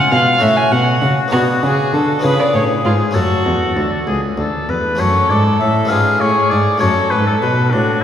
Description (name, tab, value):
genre	classical, baroque-style sonata movement with continuo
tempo	66 BPM (dotted quarters)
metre	6/8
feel	straight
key	F# minor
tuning	A4 = 440 Hz
part	warm oboe	melody	0.0-8.0 s	D4 to E#5	-18 LUFS	left 3 dB	none
part	dark violin	second line	0.0-8.0 s	E#4 to G#5	-18 LUFS	right 2 dB	none
part	harpsichord	accompaniment	0.0-8.0 s	C#2 to A4	-21 LUFS	left 2 dB	none
part	warm cello	bass	0.0-8.0 s	C#2 to D3	-18 LUFS	equal	none
room	wet concert hall reverb, RT60 2.6 s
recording	heard from further back in the room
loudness	-12 LUFS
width	side -9 dB against mid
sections	0.0-5.0 A section; 5.0-8.0 B section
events	none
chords	0.4 F#m/A; 1.3 G#dim/B; 2.2 C#7; 3.2 F#m; 5.9 C#7/G#; 6.8 F#m